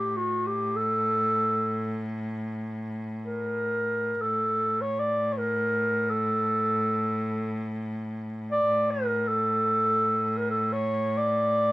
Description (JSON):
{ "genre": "turkish", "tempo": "free time", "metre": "none", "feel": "none", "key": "A makam hicaz", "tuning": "A4 = 440 Hz", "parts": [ { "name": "mellow clarinet", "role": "melody", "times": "0.0-11.7 s", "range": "F#4-38c to D5", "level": "-25 LUFS", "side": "equal", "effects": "none" }, { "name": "rich cello", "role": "drone", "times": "0.0-11.7 s", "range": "A2", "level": "-31 LUFS", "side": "equal", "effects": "none" } ], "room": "light reverb", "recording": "rough home demo mix", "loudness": "-24 LUFS", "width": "side -19 dB against mid", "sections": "0.0-11.7 A section", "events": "none", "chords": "none" }